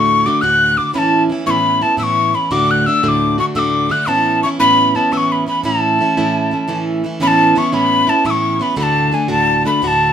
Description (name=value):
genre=celtic folk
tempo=115 BPM (dotted quarters)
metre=9/8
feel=straight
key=A major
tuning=A4 = 440 Hz
part: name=breathy mid whistle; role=melody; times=0.0-10.1 s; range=G#5 to F#6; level=-14 LUFS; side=left 1 dB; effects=none
part: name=picked plugged-in steel-string acoustic guitar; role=accompaniment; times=0.0-10.1 s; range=D2 to F#4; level=-17 LUFS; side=right 2 dB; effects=none
room=wet studio reverb, RT60 0.6 s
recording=minimal, uncompressed stereo recording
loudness=-12 LUFS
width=side -9 dB against mid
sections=0.0-7.2 A section; 7.2-10.1 A section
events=none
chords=0.0 D; 1.0 Aadd9; 2.5 D; 4.1 Aadd9; 5.6 A; 7.2 Aadd9; 8.8 D